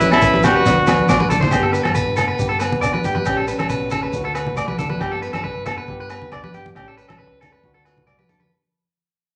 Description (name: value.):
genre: highlife guitar band.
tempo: 137 BPM.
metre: 4/4.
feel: straight.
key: G major.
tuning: A4 = 438 Hz.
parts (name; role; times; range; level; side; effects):
warm trumpet; melody; 0.0-1.3 s; E4 to F#4; -19 LUFS; equal; none.
flamenco guitar; accompaniment; 0.0-8.5 s; G2 to G4; -30 LUFS; equal; none.
electric guitar at the edge of break-up; arpeggios; 0.0-8.5 s; G4 to D5; -24 LUFS; equal; none.
deep dub fingered electric bass; bass; 0.0-8.5 s; E1 to D2; -32 LUFS; equal; none.
congas; percussion; 0.0-8.5 s; none; -26 LUFS; equal; none.
shekere; percussion; 0.0-4.9 s; none; -32 LUFS; equal; none.
crunchy breakbeat drum kit; drums; 0.1-8.4 s; hi-hat, kick drum, rim click, snare drum; -28 LUFS; equal; none.
agogo bells; percussion; 0.1-8.2 s; none; -30 LUFS; equal; none.
room: wet large studio reverb, RT60 0.9 s.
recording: none.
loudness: -18 LUFS.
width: mono.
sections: 0.0-1.5 A section; 1.5-8.5 B section.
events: drum fill 1.0-1.5; fade-out 1.5-8.5.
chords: 0.0 A7; 0.7 D; 1.5 G; 3.3 A7; 4.1 D; 5.0 G; 6.8 A7; 7.6 D.